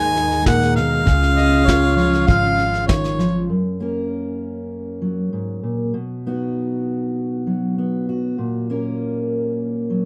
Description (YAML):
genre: acoustic folk duo or small band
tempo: 98 BPM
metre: 4/4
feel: straight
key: F# major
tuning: A4 = 440 Hz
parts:
  - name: warm harmonica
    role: melody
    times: 0.0-2.9 s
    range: E#5 to G#5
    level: -22 LUFS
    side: equal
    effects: slapback echo
  - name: fingerpicked steel-string acoustic guitar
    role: accompaniment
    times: 0.0-10.1 s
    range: F#2 to A#4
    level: -23 LUFS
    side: equal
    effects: none
  - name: warm chamber string section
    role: sustained chords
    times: 0.0-3.5 s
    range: C#3 to E#4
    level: -26 LUFS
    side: equal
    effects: none
  - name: upright bass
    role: bass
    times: 0.0-3.5 s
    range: G#1 to D#2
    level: -25 LUFS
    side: equal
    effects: none
  - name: soft brush drum kit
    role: drums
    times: 0.0-3.3 s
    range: kick drum, snare drum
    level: -22 LUFS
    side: equal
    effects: none
  - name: mellow harmonica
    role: second line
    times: 1.4-3.5 s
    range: C#5 to E#5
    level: -25 LUFS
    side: equal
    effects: none
room: light reverb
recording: dry, close 1970s-style studio recording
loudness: -20 LUFS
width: mono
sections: 0.0-3.5 A section; 3.5-10.1 B section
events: none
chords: 0.0 G#m; 1.1 C#; 3.5 F#; 5.9 B; 8.4 F#/A#